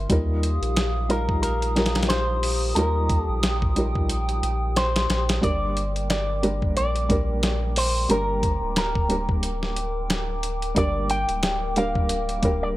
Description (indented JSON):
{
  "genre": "trip hop",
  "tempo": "90 BPM",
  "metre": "4/4",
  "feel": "swing 57% on 16ths",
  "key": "G minor",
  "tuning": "A4 = 440 Hz",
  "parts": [
    { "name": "felt-muted upright piano", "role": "accompaniment", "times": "0.0-12.8 s", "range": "G3 to Bb4", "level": "-28 LUFS", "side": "equal", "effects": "tremolo" },
    { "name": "warbly tape-like pad", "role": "sustained chords", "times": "0.0-12.8 s", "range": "G4 to Eb6", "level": "-33 LUFS", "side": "left 1 dB", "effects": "chorus, built-in reverb" },
    { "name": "warm sub bass", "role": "bass", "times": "0.0-12.8 s", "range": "D1 to Eb2", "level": "-26 LUFS", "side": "equal", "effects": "none" },
    { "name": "dusty soul sampler-style drum kit", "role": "drums", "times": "0.1-12.6 s", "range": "hi-hat, kick drum, snare drum", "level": "-25 LUFS", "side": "equal", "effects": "none" },
    { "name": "electric guitar with an envelope filter", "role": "melody", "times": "1.1-12.7 s", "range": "Bb4 to G5", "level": "-27 LUFS", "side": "equal", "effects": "tape echo" }
  ],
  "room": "little or no reverb",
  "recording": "none",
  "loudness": "-21 LUFS",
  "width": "side -16 dB against mid",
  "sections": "0.0-12.8 A section",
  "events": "none",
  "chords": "0.1 Ebadd9; 5.4 Gm"
}